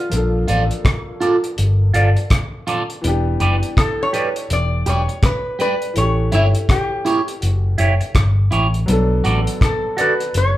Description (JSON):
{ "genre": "lovers rock reggae", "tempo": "82 BPM", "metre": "4/4", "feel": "swing 61% on 16ths", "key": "unclear", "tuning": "A4 = 443 Hz", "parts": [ { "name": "metal-body resonator slide guitar", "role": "melody", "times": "0.0-10.6 s", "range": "E4 to D5", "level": "-22 LUFS", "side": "left 2 dB", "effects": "none" }, { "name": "clear concert grand piano", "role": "accompaniment", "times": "0.0-10.6 s", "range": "E3 to A4", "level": "-25 LUFS", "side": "left 1 dB", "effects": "tape echo" }, { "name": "vintage muted fingered electric bass", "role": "bass", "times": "0.1-10.6 s", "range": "E1 to B1", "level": "-17 LUFS", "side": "equal", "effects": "none" }, { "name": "cloth-damped thuddy drum kit", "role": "drums", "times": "0.1-10.6 s", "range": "hi-hat, kick drum, rim click", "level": "-19 LUFS", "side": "equal", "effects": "none" }, { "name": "electric guitar at the edge of break-up", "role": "stabs", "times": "0.5-10.1 s", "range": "E4 to D5", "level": "-19 LUFS", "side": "right 3 dB", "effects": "phaser" } ], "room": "moderate large studio reverb, RT60 0.9 s", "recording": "band playing live in one room", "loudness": "-15 LUFS", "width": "side -15 dB against mid", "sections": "0.0-10.6 A section", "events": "none", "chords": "0.1 Bbmaj7; 3.0 Em7; 6.0 A7; 8.9 Bm7", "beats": "| 0.12 0.85 1.58 2.31 | 3.04 3.77 4.50 5.23 | 5.96 6.69 7.42 8.15 | 8.88 9.62 10.35" }